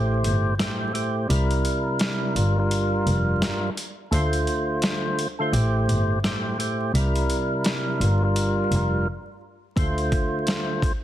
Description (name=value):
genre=hip hop, boom-bap hip-hop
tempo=85 BPM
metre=4/4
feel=swing 59% on 16ths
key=D minor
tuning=A4 = 442 Hz
part: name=percussive tonewheel organ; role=accompaniment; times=0.0-10.9 s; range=G2 to C5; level=-24 LUFS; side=equal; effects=overdrive, slow rotary speaker, high-pass filter, low-pass filter
part: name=muted double bass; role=bass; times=0.0-10.0 s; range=F1 to D2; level=-24 LUFS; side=equal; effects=none
part: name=dusty soul sampler-style drum kit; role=drums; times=0.2-11.0 s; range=hi-hat, kick drum, snare drum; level=-27 LUFS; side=equal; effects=none
room=digital ambience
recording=dense, heavily limited modern master, vinyl crackle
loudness=-21 LUFS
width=side -12 dB against mid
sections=0.0-11.0 A section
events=break 0.0-9.8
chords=0.0 Am7; 1.3 C7; 2.4 Gm7; 4.1 Dm7; 5.5 Am7; 6.9 C7; 8.0 Gm7; 9.8 Dm7